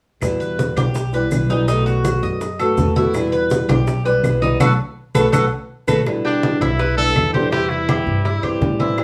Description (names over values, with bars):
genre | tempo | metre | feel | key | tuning
latin, Cuban son and guajira | 164 BPM | 4/4 | straight | E harmonic minor | A4 = 441 Hz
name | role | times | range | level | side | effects
flamenco guitar | accompaniment | 0.2-9.0 s | B2 to F#4 | -24 LUFS | equal | none
upright bass | bass | 0.2-9.0 s | B1 to A2 | -24 LUFS | equal | none
bongos | percussion | 0.2-9.0 s | none | -30 LUFS | equal | none
claves | percussion | 0.2-9.0 s | none | -35 LUFS | equal | none
congas | percussion | 0.2-9.0 s | none | -25 LUFS | equal | none
maracas | percussion | 0.2-6.0 s | none | -43 LUFS | equal | none
Cuban tres | arpeggios | 0.4-9.0 s | D#4 to E5 | -25 LUFS | equal | none
bright trumpet | melody | 6.3-8.4 s | D4 to A4 | -23 LUFS | equal | none
room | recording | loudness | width
wet studio reverb, RT60 0.6 s | band playing live in one room, small room ambience | -18 LUFS | mono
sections
0.2-6.1 A section; 6.1-9.0 B section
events
band accent 4.6-6.1; drum fill 5.5-6.1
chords
0.2 Em; 1.7 B7; 3.1 Em; 4.6 B5; 6.1 Em7; 7.5 C/E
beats
| 0.22 0.59 0.95 1.32 | 1.68 2.05 2.41 2.78 | 3.14 3.51 3.87 4.24 | 4.60 4.97 5.33 5.70 | 6.06 6.43 6.79 7.16 | 7.52 7.89 8.25 8.62 | 8.98